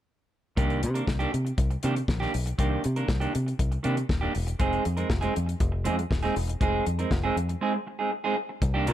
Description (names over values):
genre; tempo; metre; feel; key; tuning
disco; 119 BPM; 4/4; straight; C minor; A4 = 440 Hz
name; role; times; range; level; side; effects
clean electric guitar; accompaniment; 0.6-8.9 s; Eb3 to Bb4; -29 LUFS; right 3 dB; none
fingered electric bass; bass; 0.6-8.9 s; Eb1 to C3; -28 LUFS; equal; none
damped 70s drum kit; drums; 0.6-8.9 s; hi-hat, kick drum, snare drum; -29 LUFS; left 1 dB; none
room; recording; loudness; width
little or no reverb; none; -25 LUFS; side -12 dB against mid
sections
0.6-8.6 A section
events
break 7.6-8.6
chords
0.6 Cm9; 4.6 Fm7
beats
| 0.57 1.08 1.58 2.08 | 2.59 3.09 3.59 4.09 | 4.60 5.10 5.60 6.11 | 6.61 7.11 7.62 8.12 | 8.62